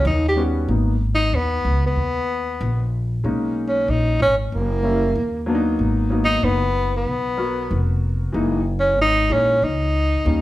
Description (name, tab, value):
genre	hip hop, jazz-hop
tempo	94 BPM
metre	4/4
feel	swing 65% on 16ths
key	G# minor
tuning	A4 = 441 Hz
part	breathy tenor saxophone	melody	0.0-10.4 s	A#3 to G4	-20 LUFS	equal	none
part	upright bass	bass	0.0-10.4 s	E#1 to D#2	-21 LUFS	equal	none
part	warm upright piano	accompaniment	0.4-10.4 s	E3 to A#4	-23 LUFS	left 1 dB	none
room	moderate large studio reverb, RT60 0.9 s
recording	band playing live in one room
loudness	-18 LUFS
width	side -15 dB against mid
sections	0.7-10.4 A section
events	none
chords	0.0 D#7alt; 0.7 G#m; 3.2 Bmaj13; 5.2 D#5; 5.8 G#m7; 8.3 F#13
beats	0.05 | 0.69 1.32 1.96 2.60 | 3.24 3.88 4.52 5.16 | 5.79 6.43 7.07 7.71 | 8.35 8.98 9.62 10.26